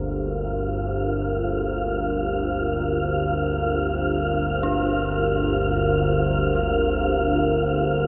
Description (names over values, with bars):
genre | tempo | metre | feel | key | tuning
dark ambient drone | free time | none | none | G minor | A4 = 439 Hz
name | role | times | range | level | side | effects
dark analog pad | sustained chords | 0.0-8.1 s | D4 to C5 | -27 LUFS | equal | chorus
analog drone | drone | 0.0-8.1 s | G1 to D2 | -28 LUFS | equal | lush chorus
wind-like tuned noise texture | texture | 0.1-8.1 s | F4 to F5 | -29 LUFS | equal | built-in reverb
dark detuned synth bell | arpeggios | 4.6-8.1 s | D4 | -36 LUFS | equal | chorus, tape echo
room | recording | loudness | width
wet huge ambient reverb, RT60 8.4 s | none | -23 LUFS | mono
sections
0.0-8.1 A section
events
none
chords
0.0 Gm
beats
free time